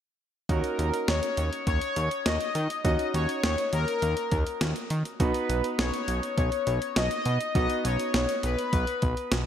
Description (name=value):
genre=synth-pop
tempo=102 BPM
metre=4/4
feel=straight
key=Eb minor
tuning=A4 = 440 Hz
part: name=analog synth brass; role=melody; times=0.5-9.5 s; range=Bb4 to Eb5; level=-29 LUFS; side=left 3 dB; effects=chorus, digital delay
part: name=clear grand piano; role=accompaniment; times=0.5-9.5 s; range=B3 to Gb4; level=-34 LUFS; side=right 2 dB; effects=none
part: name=fat analog bass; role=bass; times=0.5-9.4 s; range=B1 to Eb3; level=-28 LUFS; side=equal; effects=none
part: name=clean 12-bit digital drum machine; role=drums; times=0.5-9.5 s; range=hi-hat, kick drum, snare drum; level=-30 LUFS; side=equal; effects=gated reverb
room=moderate lush hall reverb, RT60 1.8 s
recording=bright 1980s-style digital production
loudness=-25 LUFS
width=side -9 dB against mid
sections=0.5-9.5 A section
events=none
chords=0.5 Ebm7; 5.2 B